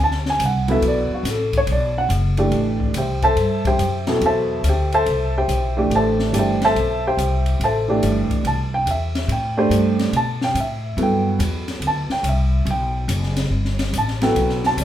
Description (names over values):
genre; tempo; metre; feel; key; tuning
modal jazz; 142 BPM; 4/4; swing 66% on 8ths; A dorian; A4 = 440 Hz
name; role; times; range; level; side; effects
warm upright piano; accompaniment; 0.0-14.8 s; B2 to A5; -20 LUFS; right 1 dB; none
upright bass; bass; 0.0-14.8 s; F#1 to B2; -21 LUFS; equal; none
open jazz drum kit; drums; 0.1-14.8 s; hi-hat, kick drum, ride cymbal, snare drum; -28 LUFS; left 2 dB; none
room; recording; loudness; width
moderate large studio reverb, RT60 1.0 s; band playing live in one room; -17 LUFS; side -11 dB against mid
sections
0.0-2.5 A section; 2.5-14.8 A section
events
none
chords
0.0 Bm7; 2.5 Am9; 9.3 G